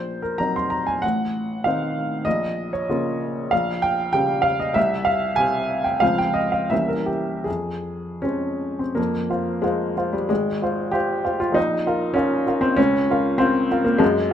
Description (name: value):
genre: classical, romantic character piece for solo piano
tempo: 77-100 BPM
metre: 2/4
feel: rubato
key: Bb minor, F minor from 3.5 s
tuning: A4 = 440 Hz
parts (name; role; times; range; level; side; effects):
- clear upright piano; solo; 0.0-14.3 s; Ab1 to C6; -20 LUFS; equal; none
room: light reverb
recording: close, detailed microphones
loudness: -20 LUFS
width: side -9 dB against mid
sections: 0.0-9.0 A section; 9.0-14.3 B section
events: none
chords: 0.0 Cm7b5/Bb; 1.0 Adim7; 2.3 Bbm; 3.5 Gdim/Bb; 4.8 C5; 6.0 Dbmaj7; 6.7 C7b9; 7.5 Fm; 9.0 F5; 10.3 Fm/Ab; 11.6 Bb5; 12.8 Bbm/Db